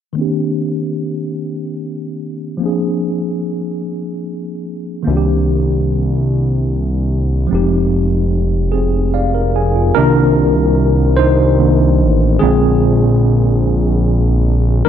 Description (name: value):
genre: slow six-eight R&B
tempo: 49 BPM (dotted quarters)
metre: 6/8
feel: straight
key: C minor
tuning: A4 = 440 Hz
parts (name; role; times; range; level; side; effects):
- tine electric piano; accompaniment; 0.1-14.9 s; D3 to Ab5; -16 LUFS; equal; medium stereo tremolo, low-pass filter
- fat analog bass; bass; 5.1-14.8 s; F1 to C2; -14 LUFS; equal; none
room: little or no reverb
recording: none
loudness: -13 LUFS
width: side -9 dB against mid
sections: 0.2-10.0 A section; 10.0-14.9 B section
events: filter sweep on tine electric piano 0.2-10.0; tine electric piano fill 8.7-10.0; tine electric piano solo 10.0-14.9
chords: 0.2 Cm9; 2.6 Bb9; 5.1 Cm9; 7.5 Fm9; 10.0 Cm9; 12.4 Bb9